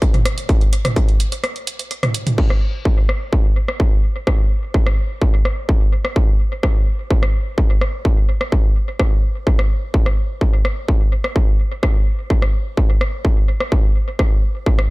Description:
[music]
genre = techno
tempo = 127 BPM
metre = 4/4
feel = straight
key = none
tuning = none
[part]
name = electronic kick drum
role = drums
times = 0.0-14.8 s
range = none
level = -15 LUFS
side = equal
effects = distortion
[part]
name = punchy analog drum machine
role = drums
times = 0.0-14.9 s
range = crash cymbal, hi-hat, rim click, toms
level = -25 LUFS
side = equal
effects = low-pass filter on hats, low-pass filter on snare, low-pass filter on toms, low-pass filter on cymbals, low-pass filter on room, tape echo
[sound]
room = little or no reverb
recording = echo-heavy mix, faint mains hum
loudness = -15 LUFS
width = side -22 dB against mid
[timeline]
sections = 0.0-2.4 A section; 2.4-14.9 B section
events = break 1.4-2.4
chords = none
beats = 0.02 | 0.49 0.96 1.44 1.91 | 2.38 2.85 3.33 3.80 | 4.27 4.74 5.22 5.69 | 6.16 6.63 7.11 7.58 | 8.05 8.52 8.99 9.47 | 9.94 10.41 10.88 11.36 | 11.83 12.30 12.78 13.25 | 13.72 14.19 14.66

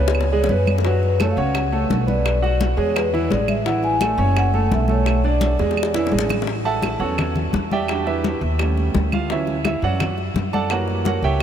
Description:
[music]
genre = Afro-Cuban jazz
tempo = 170 BPM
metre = 4/4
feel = straight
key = A major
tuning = A4 = 440 Hz
[part]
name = vibraphone with soft mallets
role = melody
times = 0.0-6.3 s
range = B4 to G#5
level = -24 LUFS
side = left 2 dB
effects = tape echo
[part]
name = clear concert grand piano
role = accompaniment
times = 0.0-11.4 s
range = E3 to A5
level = -23 LUFS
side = right 4 dB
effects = none
[part]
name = upright bass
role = bass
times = 0.0-11.4 s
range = F#1 to F#2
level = -22 LUFS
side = equal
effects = none
[part]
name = bongos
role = percussion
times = 0.1-11.4 s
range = none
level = -29 LUFS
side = left 8 dB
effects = none
[part]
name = claves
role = percussion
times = 0.1-11.4 s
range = none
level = -32 LUFS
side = right 7 dB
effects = none
[part]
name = congas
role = percussion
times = 0.1-11.4 s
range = none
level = -27 LUFS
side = left 2 dB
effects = none
[sound]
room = moderate huge ambient reverb, RT60 7.5 s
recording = dreamy mix soaked in reverb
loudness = -17 LUFS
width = side -9 dB against mid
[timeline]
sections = 0.0-6.5 A section; 6.5-11.4 B section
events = drum fill 0.0-0.8, 5.6-6.5; grand piano solo 6.5-11.4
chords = 0.1 C#5; 0.8 F#m; 2.3 Bm; 3.0 E; 3.7 A6; 4.4 F#m; 5.1 Bm7; 5.8 E7; 6.5 A6; 7.9 Em7; 8.6 D#7#11; 9.3 Dmaj7; 10.7 F#7b9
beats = 0.14 0.49 | 0.84 1.19 1.55 1.90 | 2.25 2.60 2.96 3.31 | 3.66 4.01 4.36 4.72 | 5.07 5.42 5.77 6.12 | 6.48 6.83 7.18 7.53 | 7.89 8.24 8.59 8.94 | 9.29 9.65 10.00 10.35 | 10.70 11.05 11.41

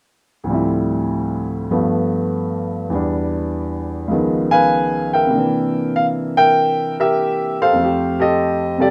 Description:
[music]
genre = solo jazz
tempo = 98 BPM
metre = 4/4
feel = swing 68% on 8ths, rubato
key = C mixolydian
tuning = A4 = 440 Hz
[part]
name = clear baby grand piano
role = solo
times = 0.4-8.9 s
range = Db2 to Ab5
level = -18 LUFS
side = equal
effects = none
[sound]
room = light reverb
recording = none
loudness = -18 LUFS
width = mono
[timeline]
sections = 0.5-5.3 A section; 5.3-8.9 B section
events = none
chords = 0.5 Dm11; 1.7 G9; 2.9 Em7; 4.1 Db13; 5.3 C9; 7.8 F9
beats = | 0.47 1.09 1.70 2.30 | 2.90 3.50 4.09 4.70 | 5.32 5.94 6.55 7.16 | 7.78 8.38

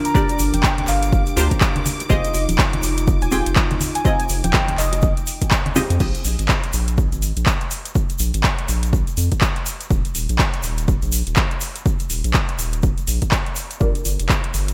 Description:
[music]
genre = deep house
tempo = 123 BPM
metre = 4/4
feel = swing 59% on 16ths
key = unclear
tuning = A4 = 441 Hz
[part]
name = dark analog pad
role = sustained chords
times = 0.0-6.0 s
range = D4 to Bb4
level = -30 LUFS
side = equal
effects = subtle chorus, sidechain pumping
[part]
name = filtered dub chord stab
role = stabs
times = 0.0-6.0, 13.8-14.7 s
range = C4 to G5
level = -27 LUFS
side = equal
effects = phaser, lush chorus, vintage 12-bit sampler grit, delay
[part]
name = warm studio violin section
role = texture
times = 0.0-6.0 s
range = D6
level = -37 LUFS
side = equal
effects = sidechain pumping
[part]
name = warm velvety synth lead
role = melody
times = 0.1-5.1 s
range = Eb5 to Bb5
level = -29 LUFS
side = equal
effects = chorus, delay
[part]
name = deep house drum kit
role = drums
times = 0.1-14.7 s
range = crash cymbal, handclaps, hi-hat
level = -26 LUFS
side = equal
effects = overdrive, studio reverb, gated reverb
[part]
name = electronic kick drum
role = drums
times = 0.1-14.4 s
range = none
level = -22 LUFS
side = equal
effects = overdrive, studio reverb
[part]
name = tube shaker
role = percussion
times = 0.1-14.7 s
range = none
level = -33 LUFS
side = equal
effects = none
[part]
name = bongos and congas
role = percussion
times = 0.3-5.9 s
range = none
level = -31 LUFS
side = equal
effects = none
[part]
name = round analog bass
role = bass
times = 0.4-14.7 s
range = Eb1 to F2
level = -24 LUFS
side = equal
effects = sidechain pumping
[sound]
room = light reverb, digital ambience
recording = bright 1980s-style digital production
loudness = -20 LUFS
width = mono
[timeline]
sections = 0.0-6.0 A section; 6.0-14.7 B section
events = drop 0.0-6.0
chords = 0.0 Gm7; 1.9 Fm9; 6.0 Bb5; 9.9 Eb5; 13.8 Gm7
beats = | 0.15 0.64 1.12 1.61 | 2.10 2.59 3.08 3.56 | 4.05 4.54 5.03 5.51 | 6.00 6.49 6.98 7.47 | 7.95 8.44 8.93 9.42 | 9.90 10.39 10.88 11.37 | 11.86 12.34 12.83 13.32 | 13.81 14.29

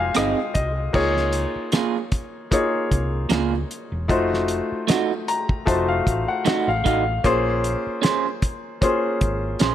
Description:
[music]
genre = lush 1970s-style soul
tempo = 76 BPM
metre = 4/4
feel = swing 54% on 16ths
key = unclear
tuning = A4 = 440 Hz
[part]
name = warm baby grand piano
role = accompaniment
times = 0.0-9.7 s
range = Ab3 to C6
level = -23 LUFS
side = left 2 dB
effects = none
[part]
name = hollow-body short-scale fingered electric bass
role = bass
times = 0.0-9.7 s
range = E1 to Db2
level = -26 LUFS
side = equal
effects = none
[part]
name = electric guitar through a small old amp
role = riff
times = 0.1-9.7 s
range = A3 to C5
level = -24 LUFS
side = right 9 dB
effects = none
[part]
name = cloth-damped thuddy drum kit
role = drums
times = 0.1-9.7 s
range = crash cymbal, hi-hat, kick drum, rim click, snare drum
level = -23 LUFS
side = equal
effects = none
[sound]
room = light reverb, small room reverb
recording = none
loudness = -20 LUFS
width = side -11 dB against mid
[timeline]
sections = 0.9-9.7 A section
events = grand piano fill 0.0-0.9, 4.9-7.2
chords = 0.0 Fm7; 0.9 Db6; 4.1 F7b9; 7.2 Bbm9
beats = 0.16 | 0.94 1.73 2.52 3.31 | 4.10 4.88 5.67 6.46 | 7.25 8.03 8.82 9.61

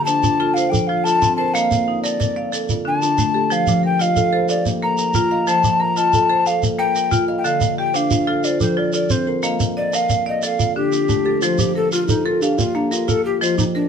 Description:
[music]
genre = southern african traditional, mbira-style interlocking cycle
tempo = 122 BPM (dotted quarters)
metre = 12/8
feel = straight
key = F mixolydian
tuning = A4 = 440 Hz
[part]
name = mellow hollow tenor recorder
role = melody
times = 0.0-13.9 s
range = D4 to Bb5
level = -19 LUFS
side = left 1 dB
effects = none
[part]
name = kalimba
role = arpeggios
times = 0.0-13.9 s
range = D3 to A5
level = -24 LUFS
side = right 4 dB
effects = none
[part]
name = marimba with hard mallets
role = arpeggios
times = 0.0-13.9 s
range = D3 to F5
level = -22 LUFS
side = left 3 dB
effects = none
[part]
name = shekere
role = percussion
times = 0.1-13.7 s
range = none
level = -23 LUFS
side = right 1 dB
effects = none
[sound]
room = moderate studio reverb, RT60 0.8 s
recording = band playing live in one room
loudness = -16 LUFS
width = side -7 dB against mid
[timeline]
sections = 0.0-11.4 A section; 11.4-13.9 B section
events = none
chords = 0.0 Dm; 0.6 F; 1.5 Bb; 2.5 Dm; 3.5 F; 4.5 Bb; 5.5 F; 6.5 Bb5; 7.4 Dm; 8.4 F; 9.4 Bb; 10.4 Dm; 11.4 F; 12.4 Bb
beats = 0.07 0.56 1.05 | 1.54 2.04 2.53 3.02 | 3.51 4.00 4.49 4.98 | 5.47 5.97 6.46 6.95 | 7.45 7.94 8.44 8.93 | 9.43 9.93 10.43 10.93 | 11.42 11.92 12.42 12.92 | 13.42

